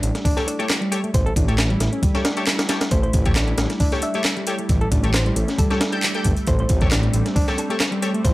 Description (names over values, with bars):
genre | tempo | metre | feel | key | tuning
breakbeat, breaks | 135 BPM | 4/4 | swing 54% on 16ths | A minor pentatonic | A4 = 438 Hz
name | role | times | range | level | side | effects
lush unison pad | sustained chords | 0.0-8.3 s | G3 to E4 | -29 LUFS | equal | chorus, sidechain pumping
overdriven reed electric piano | riff | 0.0-8.2 s | G3 to A4 | -27 LUFS | equal | tape echo
detuned saw bass | bass | 0.0-8.3 s | G1 to A1 | -21 LUFS | equal | none
breakbeat sampler-style drum kit | drums | 0.0-8.3 s | hi-hat, kick drum, snare drum | -21 LUFS | equal | studio reverb
house drum kit | drums | 0.0-8.3 s | handclaps, hi-hat | -26 LUFS | equal | overdrive, studio reverb
thumb-piano-like synth pluck | melody | 0.4-8.3 s | A4 to E5 | -31 LUFS | equal | chorus, phaser, telephone sound, tape echo
orchestra-hit-like synth stab | stabs | 0.4-8.1 s | G4 to G5 | -28 LUFS | left 3 dB | built-in reverb, tape echo
room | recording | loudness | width
light reverb | dry, gritty hardware recording | -18 LUFS | side -18 dB against mid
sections
0.0-8.3 A section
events
none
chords
0.0 A7